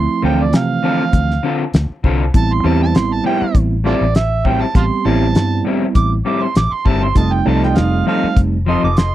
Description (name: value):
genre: straight-eighth soul blues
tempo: 100 BPM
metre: 4/4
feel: swing 53% on 16ths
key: A minor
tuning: A4 = 440 Hz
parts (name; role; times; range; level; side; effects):
- overdriven harmonica; second line; 0.0-9.1 s; F4 to D6; -20 LUFS; right 6 dB; none
- bell-like tine electric piano; accompaniment; 0.0-8.6 s; E3 to G4; -18 LUFS; right 5 dB; none
- vintage muted fingered electric bass; bass; 0.0-9.1 s; F1 to C3; -17 LUFS; equal; none
- electric guitar through a small old amp; stabs; 0.2-8.9 s; A2 to A4; -20 LUFS; left 5 dB; spring reverb
- cloth-damped thuddy drum kit; drums; 0.5-9.1 s; hi-hat, kick drum, snare drum; -14 LUFS; left 1 dB; none
- mellow horn section; sustained chords; 7.2-9.1 s; Eb4 to Eb5; -26 LUFS; equal; none
room: little or no reverb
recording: dry, close 1970s-style studio recording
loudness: -13 LUFS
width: side -13 dB against mid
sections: 0.0-9.1 A section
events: harmonica solo 0.0-9.1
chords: 0.0 Dm7; 2.3 Am7; 7.2 F7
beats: 0.53 1.14 1.74 | 2.34 2.94 3.55 4.15 | 4.75 5.36 5.96 6.56 | 7.16 7.77 8.37 8.97